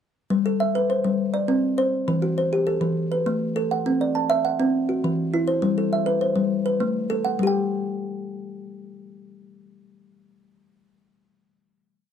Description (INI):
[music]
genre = southern african traditional, mbira-style interlocking cycle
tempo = 135 BPM (dotted quarters)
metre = 12/8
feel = straight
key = G major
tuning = A4 = 444 Hz
[part]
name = kalimba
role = solo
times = 0.3-12.0 s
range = E3 to A5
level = -21 LUFS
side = equal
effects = none
[sound]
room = moderate studio reverb, RT60 0.5 s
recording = close, detailed microphones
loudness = -20 LUFS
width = side -8 dB against mid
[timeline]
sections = 0.3-7.4 A section; 7.4-11.0 final note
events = none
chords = 0.3 G; 1.2 Csus2; 2.1 Em; 3.0 Asus2; 3.9 C; 4.7 Esus2; 5.6 G; 6.5 Am; 7.4 N.C.